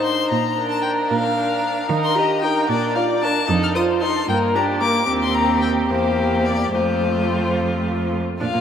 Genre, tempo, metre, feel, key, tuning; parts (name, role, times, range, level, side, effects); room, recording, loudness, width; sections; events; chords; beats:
quick classical-period movement for string quartet; 74 BPM (dotted quarters); 6/8; uneven beats, rubato; A4 = 440 Hz
rich violin; melody; 0.0-8.6 s; C5 to F6; -22 LUFS; left 5 dB
warm violin; second line; 0.0-8.6 s; F4 to Eb5; -23 LUFS; left 1 dB
rich viola; accompaniment; 0.0-8.6 s; A3 to G4; -23 LUFS; right 1 dB
rich cello; bass; 0.0-8.6 s; Eb2 to Eb3; -25 LUFS; right 4 dB
wet cathedral reverb, RT60 6.1 s; in a vast, echoing space; -17 LUFS; side -8 dB against mid
0.0-8.4 A section
0.3 Bb; 1.9 Eb; 2.7 Bb; 3.5 F7; 4.3 Gm; 5.1 Cm/Eb; 5.9 C7/E; 6.7 F
| 0.31 1.11 | 1.90 2.69 | 3.49 4.29 | 5.09 5.91 | 6.74 7.58 | 8.42